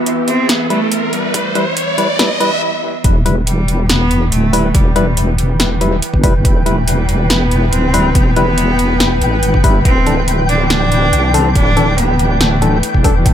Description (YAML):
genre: deep dubstep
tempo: 141 BPM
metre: 4/4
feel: swing 53% on 16ths, half-time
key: E minor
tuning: A4 = 437 Hz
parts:
  - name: clear cello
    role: melody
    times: 0.0-13.0 s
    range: G3 to D4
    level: -19 LUFS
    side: equal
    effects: dub echo
  - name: bowed-like drone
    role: sustained chords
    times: 0.0-13.3 s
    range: E3 to B4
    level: -22 LUFS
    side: right 1 dB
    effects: built-in reverb
  - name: riser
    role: sound effects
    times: 0.0-2.6 s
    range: none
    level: -18 LUFS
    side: right 1 dB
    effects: none
  - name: flickering grainy texture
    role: texture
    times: 0.0-13.3 s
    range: E5 to G5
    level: -24 LUFS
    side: equal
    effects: built-in reverb
  - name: deep house drum kit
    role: drums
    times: 0.1-13.3 s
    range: hi-hat, snare drum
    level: -18 LUFS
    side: equal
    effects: overdrive
  - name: percussive organ stab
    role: stabs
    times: 0.7-13.1 s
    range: E3 to B4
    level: -20 LUFS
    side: left 2 dB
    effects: chorus, dub echo
  - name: electronic kick drum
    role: drums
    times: 1.3-13.3 s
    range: none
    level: -12 LUFS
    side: equal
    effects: overdrive, high-pass filter on kick
  - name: wobble bass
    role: bass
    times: 3.0-13.3 s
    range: D1 to C2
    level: -14 LUFS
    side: equal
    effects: chorus, tube saturation
room: light reverb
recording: echo-heavy mix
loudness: -11 LUFS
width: side -10 dB against mid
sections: 0.0-3.0 A section; 3.0-13.3 B section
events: build-up 0.0-3.0; riser 0.0-2.6; stop 2.6-3.0; drop 3.0-13.3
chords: 0.0 Em; 9.9 Dsus2